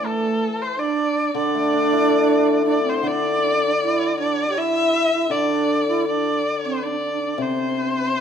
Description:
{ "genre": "chinese traditional, Chinese chamber ensemble", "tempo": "79 BPM", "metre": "4/4", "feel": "rubato", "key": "unclear", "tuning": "A4 = 443 Hz", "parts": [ { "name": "dark erhu", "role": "melody", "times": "0.0-8.2 s", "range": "A4 to E5", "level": "-22 LUFS", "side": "left 1 dB", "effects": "none" }, { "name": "alto flute", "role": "second line", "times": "0.0-8.2 s", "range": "A3 to G4", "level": "-23 LUFS", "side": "right 8 dB", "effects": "none" }, { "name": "hammered dulcimer", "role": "accompaniment", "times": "0.0-8.2 s", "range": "C3 to A4", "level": "-24 LUFS", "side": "left 7 dB", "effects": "none" } ], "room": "wet recital hall reverb, RT60 1.5 s", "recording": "none", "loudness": "-18 LUFS", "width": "side -8 dB against mid", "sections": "0.0-8.2 A section", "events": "none", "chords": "none" }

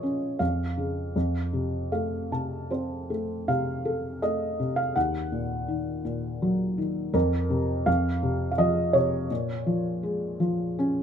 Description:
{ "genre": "classical, lyrical solo piano", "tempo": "76-85 BPM", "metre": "3/4", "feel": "rubato", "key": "unclear", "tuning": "A4 = 440 Hz", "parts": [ { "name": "felt-muted upright piano", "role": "solo", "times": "0.0-11.0 s", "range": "Eb2 to A5", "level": "-25 LUFS", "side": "equal", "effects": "none" } ], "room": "light reverb", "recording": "minimal, uncompressed stereo recording", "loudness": "-25 LUFS", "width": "side -8 dB against mid", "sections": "0.0-11.0 A section", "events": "felt piano fill 1.5-2.7", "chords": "0.4 Db/F; 1.2 F; 5.0 Ebm; 7.1 F5; 9.3 Bbm7" }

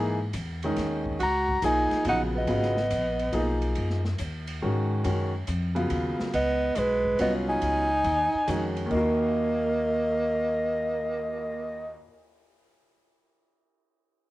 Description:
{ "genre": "modal jazz", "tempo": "140 BPM", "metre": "3/4", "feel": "swing 67% on 8ths", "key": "Eb minor", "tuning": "A4 = 442 Hz", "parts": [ { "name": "clear grand piano", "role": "accompaniment", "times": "0.0-12.0 s", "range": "Eb2 to Bb4", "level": "-29 LUFS", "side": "equal", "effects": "cassette tape" }, { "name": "upright bass", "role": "bass", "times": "0.0-11.9 s", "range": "Ab1 to Ab2", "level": "-31 LUFS", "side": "left 1 dB", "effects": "none" }, { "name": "open jazz drum kit", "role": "drums", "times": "0.3-11.4 s", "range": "crash cymbal, cymbal swell, hi-hat, kick drum, ride cymbal, snare drum", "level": "-40 LUFS", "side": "equal", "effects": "none" }, { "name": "breathy soprano saxophone", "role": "melody", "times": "1.2-3.6, 6.3-11.9 s", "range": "Cb5 to Bb5", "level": "-27 LUFS", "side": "equal", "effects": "none" }, { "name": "breathy tenor saxophone", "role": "second line", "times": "1.2-3.6, 6.3-11.9 s", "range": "Ab3 to Gb4", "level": "-29 LUFS", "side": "right 2 dB", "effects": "cassette tape" } ], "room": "light reverb, small room ambience", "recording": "home recording on cassette", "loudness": "-24 LUFS", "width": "side -16 dB against mid", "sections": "0.0-6.3 A section; 6.3-8.9 B section; 8.9-11.5 C section", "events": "none", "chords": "0.0 Eb7sus4; 1.2 Db9sus4; 8.9 Ebm" }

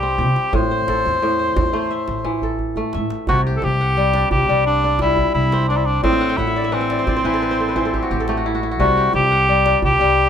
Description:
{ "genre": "west african traditional, West African string and xylophone music", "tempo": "87 BPM", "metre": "4/4", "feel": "straight", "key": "C lydian", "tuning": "A4 = 440 Hz", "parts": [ { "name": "mellow cor anglais", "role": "melody", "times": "0.0-10.3 s", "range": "C4 to C5", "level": "-18 LUFS", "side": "equal", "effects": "none" }, { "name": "kora", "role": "arpeggios", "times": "0.0-10.3 s", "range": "A2 to G5", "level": "-21 LUFS", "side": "left 2 dB", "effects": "none" }, { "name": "upright bass", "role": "bass", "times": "0.0-10.3 s", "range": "A1 to C3", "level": "-23 LUFS", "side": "equal", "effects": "none" }, { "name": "djembe", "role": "percussion", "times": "0.0-10.3 s", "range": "none", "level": "-26 LUFS", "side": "right 2 dB", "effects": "none" } ], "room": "moderate small room reverb, RT60 0.5 s", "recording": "minimal, uncompressed stereo recording", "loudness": "-16 LUFS", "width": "side -8 dB against mid", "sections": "0.0-3.3 A section; 3.3-10.3 B section", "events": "drum fill 2.6-3.3; kora fill 6.1-8.8", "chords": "0.0 C; 0.5 Am; 3.3 C; 6.0 Am; 8.8 C5" }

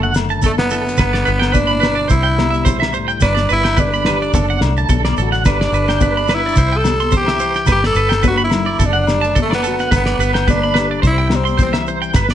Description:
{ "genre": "highlife guitar band", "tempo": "108 BPM", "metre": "4/4", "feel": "swing 54% on 16ths", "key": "G major", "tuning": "A4 = 440 Hz", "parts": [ { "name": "growling tenor saxophone", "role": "melody", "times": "0.0-11.7 s", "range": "A3 to A4", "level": "-19 LUFS", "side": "right 1 dB", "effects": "plate reverb" }, { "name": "nylon-string guitar", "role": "accompaniment", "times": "0.0-12.3 s", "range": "F#2 to G4", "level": "-25 LUFS", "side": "left 7 dB", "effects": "none" }, { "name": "electric guitar at the edge of break-up", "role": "arpeggios", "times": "0.0-12.3 s", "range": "A4 to C6", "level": "-20 LUFS", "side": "right 5 dB", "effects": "tremolo, slapback echo" }, { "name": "fingered electric bass", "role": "bass", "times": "0.0-12.3 s", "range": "F#1 to C2", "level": "-20 LUFS", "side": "equal", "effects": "none" }, { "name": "shekere", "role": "percussion", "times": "0.1-12.3 s", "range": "none", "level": "-24 LUFS", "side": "right 4 dB", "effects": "none" }, { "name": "cloth-damped thuddy drum kit", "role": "drums", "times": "0.2-12.3 s", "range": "kick drum, snare drum", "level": "-18 LUFS", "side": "equal", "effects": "none" }, { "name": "agogo bells", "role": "percussion", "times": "0.2-12.3 s", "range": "none", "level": "-28 LUFS", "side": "left 13 dB", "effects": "none" }, { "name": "congas", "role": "percussion", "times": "0.2-12.2 s", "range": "none", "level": "-24 LUFS", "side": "left 4 dB", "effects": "none" } ], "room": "light reverb", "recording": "nothing above 10.5 kHz", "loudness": "-13 LUFS", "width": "side -11 dB against mid", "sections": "0.0-12.3 A section", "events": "none", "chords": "0.0 D/F#; 1.0 G; 2.1 C; 3.2 G; 4.3 D/F#; 5.5 G; 6.6 C; 7.7 G; 8.8 D/F#; 9.9 G; 11.0 C" }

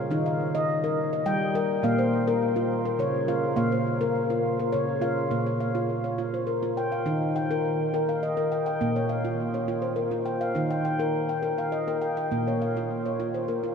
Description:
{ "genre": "world meditative, meditative tuned percussion", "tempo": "103 BPM", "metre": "3/4", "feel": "straight", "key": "Bb dorian", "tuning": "A4 = 440 Hz", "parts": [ { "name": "handpan", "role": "solo", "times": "0.0-13.7 s", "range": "Bb2 to G5", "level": "-24 LUFS", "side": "equal", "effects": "ping-pong delay" } ], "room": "wet huge ambient reverb, RT60 8.0 s", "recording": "dreamy mix soaked in reverb", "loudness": "-24 LUFS", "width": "side -6 dB against mid", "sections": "0.0-5.3 A section; 5.3-13.7 B section", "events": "none", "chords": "0.1 Eb; 1.8 Bbm; 7.1 Eb; 8.8 Bbm; 10.6 Eb; 12.3 Bbm" }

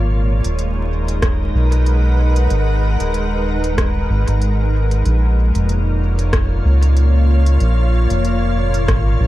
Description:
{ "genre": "ambient dub", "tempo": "94 BPM", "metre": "4/4", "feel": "swing 56% on 16ths", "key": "G# dorian", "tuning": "A4 = 438 Hz", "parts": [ { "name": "soft additive organ-like pad", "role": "sustained chords", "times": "0.0-9.3 s", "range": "A#2 to F#5", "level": "-22 LUFS", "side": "equal", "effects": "ensemble chorus, built-in reverb" }, { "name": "round analog bass", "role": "bass", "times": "0.0-9.3 s", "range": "D#1 to C#2", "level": "-15 LUFS", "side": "equal", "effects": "none" }, { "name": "organic electronic drum kit", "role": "drums", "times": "0.4-9.0 s", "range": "hi-hat, rim click", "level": "-25 LUFS", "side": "equal", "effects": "overdrive, dub echo" }, { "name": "electronic kick drum", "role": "drums", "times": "1.2-9.0 s", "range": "none", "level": "-21 LUFS", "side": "equal", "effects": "none" } ], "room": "digital ambience", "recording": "vinyl crackle", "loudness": "-14 LUFS", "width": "side -15 dB against mid", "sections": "0.0-9.3 A section", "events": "none", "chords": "0.0 G#m7; 5.1 A#m" }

